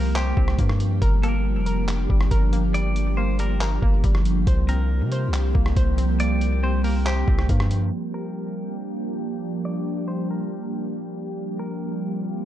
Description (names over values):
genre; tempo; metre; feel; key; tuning
hip hop, atmospheric cloud-rap; 139 BPM; 4/4; half-time; G minor; A4 = 440 Hz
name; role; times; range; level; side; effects
semi-hollow electric guitar; melody; 0.0-12.2 s; G4 to D5; -34 LUFS; left 1 dB; spring reverb, low-pass filter, tape echo
glassy FM pad; sustained chords; 0.0-12.4 s; F3 to G4; -27 LUFS; right 1 dB; ensemble chorus, built-in reverb, sidechain pumping
hollow square pluck; arpeggios; 0.0-7.9 s; G3 to C5; -34 LUFS; left 2 dB; chorus, low-pass filter, tape echo
long sustained 808-style bass; bass; 0.0-7.9 s; F1 to C3; -22 LUFS; equal; none
trip hop sampler-style drum kit; drums; 0.2-7.8 s; handclaps, hi-hat, kick drum, rim click; -23 LUFS; equal; none
room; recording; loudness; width
little or no reverb; dark, warm production, low-pass filter; -20 LUFS; side -12 dB against mid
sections
0.0-7.9 A section; 7.9-12.4 B section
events
none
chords
0.0 C7sus4; 1.0 Gm7; 4.5 C7sus4; 7.9 Gm7; 11.4 C7sus4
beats
0.15 0.58 | 1.02 1.45 1.88 2.31 | 2.74 3.17 3.61 4.04 | 4.47 4.90 5.33 5.76 | 6.20 6.63 7.06 7.49 | 7.92 8.36 8.79 9.22 | 9.65 10.08 10.51 10.95 | 11.38 11.81 12.24